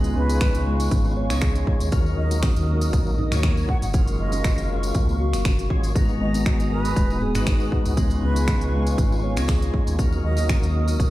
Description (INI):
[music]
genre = afro house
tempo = 119 BPM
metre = 4/4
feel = swing 54% on 16ths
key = unclear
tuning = A4 = 441 Hz
[part]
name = dark analog pad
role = sustained chords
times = 0.0-11.1 s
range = B3 to D#6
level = -32 LUFS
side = right 1 dB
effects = chorus, sidechain pumping
[part]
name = kalimba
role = arpeggios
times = 0.0-11.1 s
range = C#3 to C#5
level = -28 LUFS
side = left 1 dB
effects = sidechain pumping, digital delay
[part]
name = percussive tonewheel organ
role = stabs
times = 0.0-11.1 s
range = F#3 to A#5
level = -31 LUFS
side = left 2 dB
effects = overdrive, chorus vibrato, slow rotary speaker, sidechain pumping, digital delay
[part]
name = round analog bass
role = bass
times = 0.0-11.1 s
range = D#1 to D#2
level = -24 LUFS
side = equal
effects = sidechain pumping
[part]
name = house drum kit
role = drums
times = 0.0-11.1 s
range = finger snaps, hi-hat, toms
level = -32 LUFS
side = right 1 dB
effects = none
[part]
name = tambourine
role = percussion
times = 0.0-11.1 s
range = none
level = -40 LUFS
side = left 3 dB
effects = none
[part]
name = breathy concert flute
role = melody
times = 0.2-10.5 s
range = B4 to F#5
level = -33 LUFS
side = right 3 dB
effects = digital delay
[part]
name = electronic kick drum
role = drums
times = 0.4-11.1 s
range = none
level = -22 LUFS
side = equal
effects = none
[sound]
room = digital ambience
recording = played on a big sound system in a bare room, large studio reverb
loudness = -19 LUFS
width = side -16 dB against mid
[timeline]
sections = 0.0-11.1 A section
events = none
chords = 0.0 C#7; 1.9 D#m; 3.9 F#maj7; 6.0 G#m7; 8.0 C#7; 10.0 D#m